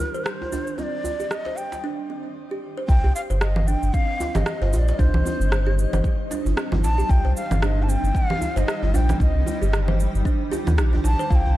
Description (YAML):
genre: organic downtempo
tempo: 114 BPM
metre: 4/4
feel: swing 57% on 16ths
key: C minor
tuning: A4 = 440 Hz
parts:
  - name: breathy bright low ney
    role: melody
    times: 0.0-11.6 s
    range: Bb4 to A5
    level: -29 LUFS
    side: equal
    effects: digital delay, shimmer reverb
  - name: granular cloud pad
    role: sustained chords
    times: 0.0-11.6 s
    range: Eb3 to G5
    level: -33 LUFS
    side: left 2 dB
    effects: built-in reverb, sidechain pumping, shimmer reverb
  - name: electronic shaker, rim click and congas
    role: drums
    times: 0.0-11.4 s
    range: none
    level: -28 LUFS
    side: right 2 dB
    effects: studio reverb
  - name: djembe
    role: percussion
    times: 0.0-11.5 s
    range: none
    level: -32 LUFS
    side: right 1 dB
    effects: none
  - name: quartz singing bowl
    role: texture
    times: 0.0-1.8, 11.3-11.6 s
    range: none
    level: barely audible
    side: none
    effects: none
  - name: kalimba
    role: arpeggios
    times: 0.1-11.3 s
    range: C4 to C5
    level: -30 LUFS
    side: right 2 dB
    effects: digital delay, shimmer reverb
  - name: round analog bass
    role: bass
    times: 2.9-11.5 s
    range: G1 to Eb2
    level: -20 LUFS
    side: equal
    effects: sidechain pumping
  - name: electronic kick drum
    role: drums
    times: 2.9-11.4 s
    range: none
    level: -21 LUFS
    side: equal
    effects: studio reverb
room: studio reverb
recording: dark, warm production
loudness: -20 LUFS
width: side -15 dB against mid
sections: 0.0-2.9 A section; 2.9-11.6 B section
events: break 1.8-2.9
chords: 0.0 Cm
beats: 0.26 | 0.78 1.31 1.83 2.36 | 2.89 3.41 3.94 4.47 | 4.99 5.52 6.04 6.57 | 7.10 7.62 8.15 8.68 | 9.20 9.73 10.26 10.78 | 11.31